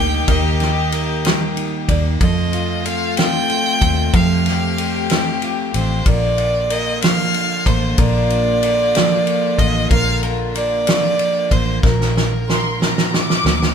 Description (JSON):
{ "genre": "six-eight pop ballad", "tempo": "62 BPM (dotted quarters)", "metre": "6/8", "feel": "straight", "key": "Bb major", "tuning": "A4 = 440 Hz", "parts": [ { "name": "rich violin", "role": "melody", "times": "0.0-13.4 s", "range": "Bb4 to G5", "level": "-20 LUFS", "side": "right 1 dB", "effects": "none" }, { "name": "fingerpicked steel-string acoustic guitar", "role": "accompaniment", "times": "0.0-13.7 s", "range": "Bb2 to Bb4", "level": "-23 LUFS", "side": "right 6 dB", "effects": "none" }, { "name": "dark studio string section", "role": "sustained chords", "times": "0.0-13.7 s", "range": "D3 to G4", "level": "-24 LUFS", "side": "left 5 dB", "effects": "none" }, { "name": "vintage muted fingered electric bass", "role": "bass", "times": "0.0-13.7 s", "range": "A1 to F2", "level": "-21 LUFS", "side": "left 1 dB", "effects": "none" }, { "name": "loose indie drum kit", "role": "drums", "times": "0.3-13.7 s", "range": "kick drum, ride cymbal, snare drum", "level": "-19 LUFS", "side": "equal", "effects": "none" }, { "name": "rich studio violin section", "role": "second line", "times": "12.5-13.7 s", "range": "Bb5 to D6", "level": "-22 LUFS", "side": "left 2 dB", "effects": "ping-pong delay" } ], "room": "moderate studio reverb, RT60 0.8 s", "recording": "band playing live in one room", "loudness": "-15 LUFS", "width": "side -7 dB against mid", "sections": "0.0-13.7 A section", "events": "drum fill 11.8-13.7", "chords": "0.0 Eb; 2.2 F; 6.1 Bb" }